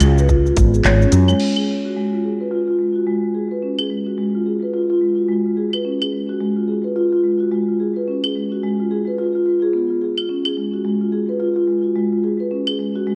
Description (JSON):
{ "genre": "organic downtempo", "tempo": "108 BPM", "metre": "4/4", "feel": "swing 60% on 16ths", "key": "unclear", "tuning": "A4 = 440 Hz", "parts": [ { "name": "marimba with soft mallets", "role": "arpeggios", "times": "0.0-13.2 s", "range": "G#3 to C#5", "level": "-20 LUFS", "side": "equal", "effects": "low-pass filter, digital delay" }, { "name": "woody fretless electric bass", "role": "bass", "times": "0.0-1.3 s", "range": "G#1 to F#2", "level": "-16 LUFS", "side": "equal", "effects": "tube saturation, sidechain pumping" }, { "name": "organic electronic drum kit", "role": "drums", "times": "0.0-12.8 s", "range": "cabasa, claves, crash cymbal, handclaps, hi-hat", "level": "-26 LUFS", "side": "equal", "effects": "none" }, { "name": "electronic kick drum", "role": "drums", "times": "0.3-0.7 s", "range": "none", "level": "-18 LUFS", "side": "equal", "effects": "none" } ], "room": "moderate echo chamber reverb, RT60 2.1 s", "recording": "worn, warbling old tape, cassette tape, warbly pitch drift", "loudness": "-19 LUFS", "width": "mono", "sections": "0.0-1.4 A section; 1.4-13.2 B section", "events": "none", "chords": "0.0 G#sus4", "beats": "0.29 0.85 | 1.40 1.96 2.51 3.07 | 3.62 4.18 4.73 5.29 | 5.85 6.40 6.96 7.51 | 8.07 8.62 9.18 9.73 | 10.29 10.85 11.40 11.96 | 12.51 13.07" }